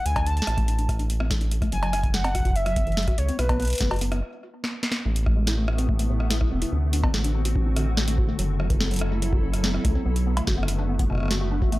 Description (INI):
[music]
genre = IDM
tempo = 144 BPM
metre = 4/4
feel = straight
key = unclear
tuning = A4 = 440 Hz
[part]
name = warbly nostalgic lead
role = melody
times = 0.0-4.0 s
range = B4 to A5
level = -29 LUFS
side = equal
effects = chorus, analog delay
[part]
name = deep acid bass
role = arpeggios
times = 0.0-11.8 s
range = F#2 to F#4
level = -32 LUFS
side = left 2 dB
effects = wide subtle chorus, tape echo
[part]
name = round analog bass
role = bass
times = 0.1-11.8 s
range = E1 to D2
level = -25 LUFS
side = equal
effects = none
[part]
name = booming analog drum machine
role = drums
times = 0.1-11.8 s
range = cowbell, hi-hat, rim click, snare drum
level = -30 LUFS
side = equal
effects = none
[part]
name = electronic kick drum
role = drums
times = 0.2-11.7 s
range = none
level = -25 LUFS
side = equal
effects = none
[part]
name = glassy FM pad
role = sustained chords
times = 5.1-11.8 s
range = C3 to A4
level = -31 LUFS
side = equal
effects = ensemble chorus, built-in reverb, sidechain pumping
[sound]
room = little or no reverb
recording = dry, gritty hardware recording, transformer saturation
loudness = -21 LUFS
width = side -18 dB against mid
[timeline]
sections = 0.0-5.1 A section; 5.1-11.8 B section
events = filter sweep on acid bass 0.0-5.1; break 4.2-5.1; drum fill 4.6-5.1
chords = 0.1 D5; 1.7 F#5; 3.4 B5; 5.1 Amadd9; 6.7 D7; 8.4 F#m7; 10.1 Bm7